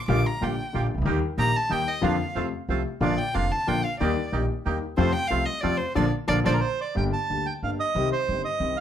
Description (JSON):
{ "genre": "tango", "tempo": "184 BPM", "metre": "3/4", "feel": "rubato", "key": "Bb major", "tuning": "A4 = 441 Hz", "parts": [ { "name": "warm violin", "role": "second line", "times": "0.0-6.6 s", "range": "C5 to D6", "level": "-28 LUFS", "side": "equal", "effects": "none" }, { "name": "warm concert grand piano", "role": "accompaniment", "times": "0.1-8.7 s", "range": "F1 to G4", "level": "-27 LUFS", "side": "left 4 dB", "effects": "none" }, { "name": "bandoneon", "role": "stabs", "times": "0.1-6.6 s", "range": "A3 to G4", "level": "-32 LUFS", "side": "right 7 dB", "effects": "none" }, { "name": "upright bass", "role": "bass", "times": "0.1-8.7 s", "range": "F1 to F2", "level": "-29 LUFS", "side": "right 2 dB", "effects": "none" }, { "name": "bandoneon", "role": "melody", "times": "6.5-8.8 s", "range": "Bb4 to A5", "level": "-27 LUFS", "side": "right 5 dB", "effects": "plate reverb" } ], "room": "moderate club reverb, RT60 0.7 s", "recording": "none", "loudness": "-23 LUFS", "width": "side -10 dB against mid", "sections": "0.0-7.0 A section; 7.0-8.8 B section", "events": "violin solo 0.0-7.0; band accent 6.0-7.0", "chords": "0.1 Gm7/Bb; 1.1 Eb; 2.0 Bb/F; 2.4 F; 3.0 Bb; 4.0 Eb; 5.0 F; 6.0 Bb; 7.0 Gm; 7.9 Cm" }